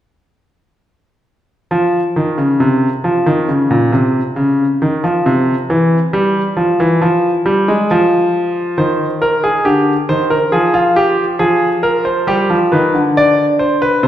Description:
classical, baroque-style two-part invention for grand piano; 68 BPM; 4/4; straight; A4 = 440 Hz
clear concert grand piano; solo; 1.7-14.1 s; Bb2 to D5; -12 LUFS; equal
wet recital hall reverb, RT60 1.8 s; heard from further back in the room; -12 LUFS; side -12 dB against mid
1.7-14.1 A section
1.7 N.C.; 8.8 Cm/Eb; 10.5 Fm; 12.3 G
| 1.71 2.60 3.48 4.37 | 5.25 6.13 7.01 7.90 | 8.78 9.66 10.53 11.40 | 12.28 13.16 14.04

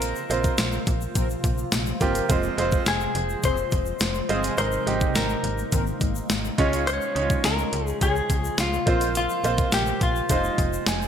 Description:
1980s-style pop; 105 BPM; 4/4; straight; A4 = 440 Hz
direct-recorded clean electric guitar; melody; 0.0-10.8 s; F4 to Db5; -27 LUFS; left 3 dB; lush chorus
bright grand piano; accompaniment; 0.0-11.1 s; Ab3 to Ab5; -28 LUFS; right 4 dB
granular cloud pad; sustained chords; 0.0-11.1 s; C3 to F4; -34 LUFS; left 1 dB; built-in reverb
slap-like FM bass; bass; 0.0-11.1 s; F1 to Db2; -29 LUFS; equal
clean 12-bit digital drum machine; drums; 0.0-11.0 s; hi-hat, kick drum, snare drum, tambourine; -25 LUFS; equal
egg shaker; percussion; 0.0-11.1 s; -40 LUFS; left 9 dB
mellow synth brass; stabs; 1.2-10.4 s; Eb3 to Db5; -35 LUFS; left 2 dB
moderate plate reverb, RT60 2.2 s; bright 1980s-style digital production; -21 LUFS; side -8 dB against mid
0.0-11.1 A section
grand piano fill 10.6-11.1
0.0 Bbsus2; 2.3 Fm; 4.6 Abadd9; 6.6 Db; 8.9 Bbsus2; 10.3 Fm7
| 0.01 0.58 1.16 1.73 | 2.30 2.87 3.44 4.01 | 4.58 5.16 5.73 6.30 | 6.87 7.44 8.01 8.58 | 9.16 9.73 10.30 10.87

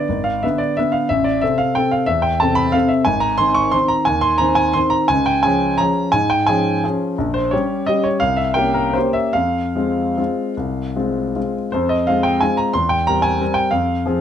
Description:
classical, piano waltz; 142-191 BPM; 3/4; rubato; A minor, F minor from 3.1 s; A4 = 441 Hz
clear grand piano; solo; 0.0-14.2 s; G#1 to Db6; -15 LUFS; equal
light reverb; close, detailed microphones; -15 LUFS; side -9 dB against mid
0.0-11.7 A section; 11.7-14.2 B section
0.0 G#dim7; 1.1 Am; 3.1 Ab; 5.1 Db; 7.2 Gdim/Bb; 8.2 C5; 9.4 Fm; 12.7 C7/E
| 0.10 0.43 0.78 | 1.10 1.42 1.76 | 2.08 2.41 2.74 | 3.07 3.40 3.74 | 4.08 4.42 4.76 | 5.10 5.44 5.79 | 6.14 6.48 6.84 | 7.18 7.53 7.88 | 8.21 8.56 8.95 | 9.36 9.77 10.19 | 10.58 10.97 11.36 | 11.74 12.08 12.41 | 12.74 13.07 13.41 | 13.73 14.06

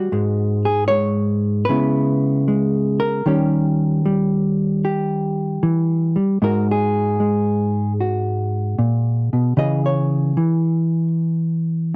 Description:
solo jazz; 76 BPM; 4/4; swing 68% on 8ths; G# minor; A4 = 439 Hz
hollow-body jazz guitar; solo; 0.0-12.0 s; G#2 to D#5; -19 LUFS; equal
light reverb; dry, close 1970s-style studio recording; -19 LUFS; mono
0.0-6.4 A section; 6.4-12.0 B section
hollow-body jazz guitar solo 6.4-12.0
0.1 N.C.; 1.7 C#m7; 3.3 D#7; 6.4 G#7(no3); 9.6 C#m
| 0.10 0.89 1.68 2.46 | 3.25 4.04 4.83 5.62 | 6.41 7.20 7.99 8.77 | 9.56 10.35 11.14 11.93

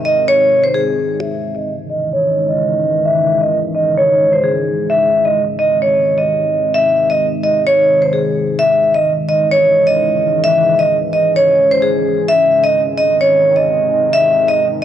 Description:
hip hop; 130 BPM; 4/4; half-time; C# harmonic minor; A4 = 440 Hz
deep dark ambient pad; sustained chords; 0.0-14.8 s; B#2 to C#4; -21 LUFS; left 1 dB; chorus, built-in reverb, low-pass filter
vibraphone with medium hard mallets; melody; 0.1-14.8 s; G#4 to E5; -12 LUFS; equal; low-pass filter, analog delay
light reverb, small room ambience; dry, gritty hardware recording, cassette tape; -11 LUFS; side -10 dB against mid
0.0-1.2 A section; 1.2-8.6 B section; 8.6-14.8 A section
filter sweep 1.2-8.6
0.0 G#; 1.2 C#madd9; 4.9 G#; 8.6 C#madd9; 12.3 G#
0.28 0.74 | 1.21 1.67 2.13 2.59 | 3.05 3.51 3.98 4.44 | 4.90 5.36 5.82 6.28 | 6.75 7.21 7.67 8.13 | 8.59 9.05 9.51 9.97 | 10.44 10.90 11.36 11.82 | 12.28 12.74 13.21 13.67 | 14.13 14.59

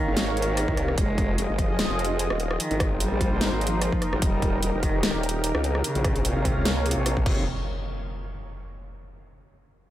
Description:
heavy wobble dubstep; 148 BPM; 4/4; swing 54% on 16ths, half-time; A4 = 441 Hz
dark cello; melody; 0.0-7.4 s; C3 to Ab3; -31 LUFS; equal; dub echo
lush unison pad; sustained chords; 0.0-7.4 s; Eb3 to F5; -30 LUFS; equal; chorus, sidechain pumping
formant-sweep wobble bass; bass; 0.1-7.4 s; Eb1 to Db2; -27 LUFS; equal; chorus, overdrive
dubstep drum kit; drums; 0.2-7.3 s; crash cymbal, hi-hat, rim click, snare drum; -29 LUFS; equal; studio reverb
electronic kick drum; drums; 0.7-7.3 s; -26 LUFS; equal; studio reverb
impact; sound effects; 7.3-8.9 s; -34 LUFS; equal
light reverb; -22 LUFS; side -13 dB against mid
0.0-7.5 A section; 7.5-9.1 B section
0.0 Bbm; 1.0 Fm7; 2.6 Abadd9; 4.2 Eb; 5.8 Bbm; 7.3 Fm7; 7.5 N.C.
0.17 0.57 | 0.98 1.38 1.79 2.19 | 2.60 3.00 3.41 3.81 | 4.22 4.63 5.03 5.44 | 5.84 6.25 6.65 7.06 | 7.46 7.87 8.27 8.68

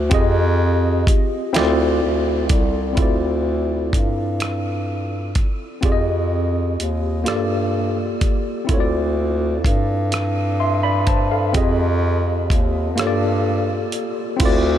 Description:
slow six-eight R&B; 42 BPM (dotted quarters); 6/8; straight; A4 = 440 Hz
tine electric piano; accompaniment; 0.0-14.8 s; Bb3 to C6; -22 LUFS; equal; overdrive, fast stereo tremolo
warm bass clarinet; bass; 0.0-14.8 s; C2 to G2; -20 LUFS; equal
dusty soul sampler-style drum kit; drums; 0.1-14.6 s; crash cymbal, hi-hat, kick drum, rim click, snare drum; -21 LUFS; equal
light reverb; -17 LUFS; side -10 dB against mid
0.0-3.0 A section; 3.0-14.4 B section
break 13.0-14.4
0.1 Fm9; 1.5 Dm9; 5.8 Fm9; 7.3 Gm9; 8.7 Dm9; 11.5 Fm9; 13.0 Gm9
| 0.12 1.54 | 2.97 4.40 | 5.83 7.26 | 8.69 10.12 | 11.54 12.97 | 14.40

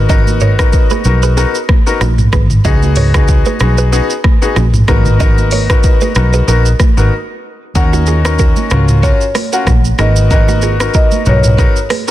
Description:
afrobeats; 94 BPM; 4/4; swing 55% on 16ths; A4 = 441 Hz
bright grand piano; accompaniment; 0.0-12.1 s; Cb4 to Bb4; -17 LUFS; left 5 dB
vintage muted fingered electric bass; bass; 0.0-11.7 s; Ab1 to Eb2; -12 LUFS; equal
direct-recorded clean electric guitar; riff; 0.1-12.1 s; Db4 to Eb5; -22 LUFS; right 8 dB; ping-pong delay
afro-pop drum kit; drums; 0.1-12.1 s; hi-hat, kick drum, rim click, shaker, toms; -12 LUFS; equal; vintage 12-bit sampler grit, soft clipping on snare
congas; percussion; 0.1-12.1 s; -24 LUFS; right 10 dB
marimba with medium mallets; melody; 7.8-12.1 s; Db5 to Gb5; -18 LUFS; equal; ping-pong delay
digital ambience; dense, heavily limited modern master; -9 LUFS; side -14 dB against mid
0.0-7.8 A section; 7.8-12.1 B section
break 7.1-7.8
0.0 Abm7; 2.6 Db7sus4; 4.9 Abm7; 7.8 Ebm7; 10.0 Abm7
| 0.10 0.73 1.37 2.01 | 2.65 3.29 3.92 4.56 | 5.20 5.84 6.48 7.12 | 7.75 8.39 9.03 9.67 | 10.31 10.95 11.59

